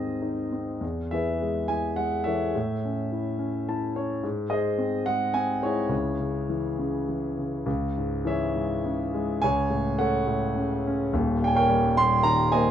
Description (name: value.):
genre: classical, lyrical solo piano.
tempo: 105 BPM.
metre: 3/4.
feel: uneven beats, rubato.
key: C# minor.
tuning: A4 = 440 Hz.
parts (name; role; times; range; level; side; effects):
warm concert grand piano; solo; 0.0-12.7 s; D#1 to B#5; -24 LUFS; equal; none.
room: moderate small room ambience, RT60 0.5 s.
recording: worn, warbling old tape, cassette tape, warbly pitch drift.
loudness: -24 LUFS.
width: side -9 dB against mid.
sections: 0.0-7.7 A section; 7.7-12.7 A section.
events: grand piano fill 3.4-4.2.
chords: 0.0 G#; 0.8 E; 2.6 A; 4.2 G#; 5.9 C#m; 9.4 F#m/C#; 11.1 D#7.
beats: 0.22 | 0.82 1.41 1.99 | 2.55 3.12 3.68 | 4.24 4.79 5.36 | 5.92 6.49 7.08 | 7.68 8.27 8.86 | 9.43 10.00 10.57 | 11.14 11.70 12.25.